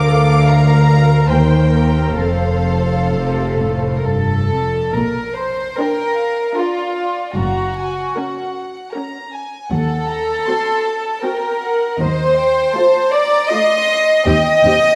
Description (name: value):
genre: classical, slow romantic movement for string orchestra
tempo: 63-80 BPM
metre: 3/4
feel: rubato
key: Bb major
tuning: A4 = 441 Hz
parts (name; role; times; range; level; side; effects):
- warm studio violin section; melody; 0.0-15.0 s; D5 to D6; -29 LUFS; equal; none
- warm symphonic violin section; second line; 0.0-15.0 s; F4 to F5; -19 LUFS; equal; none
- warm studio viola section; accompaniment; 0.0-14.7 s; A3 to C5; -26 LUFS; equal; none
- warm symphonic cello section; bass; 0.0-14.7 s; D2 to C3; -22 LUFS; equal; none
- warm symphonic double bass section; bass; 0.0-14.7 s; F1 to Eb2; -20 LUFS; equal; none
room: wet scoring stage reverb, RT60 1.8 s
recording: vinyl crackle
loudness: -16 LUFS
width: mono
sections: 0.0-5.0 A section; 5.0-15.0 B section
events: none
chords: 0.0 Bb/D; 1.3 Eb6; 2.2 F; 5.0 Bb; 7.4 Gb; 9.7 Cm7b5/Eb; 12.0 F7/Eb; 14.3 Cm/Eb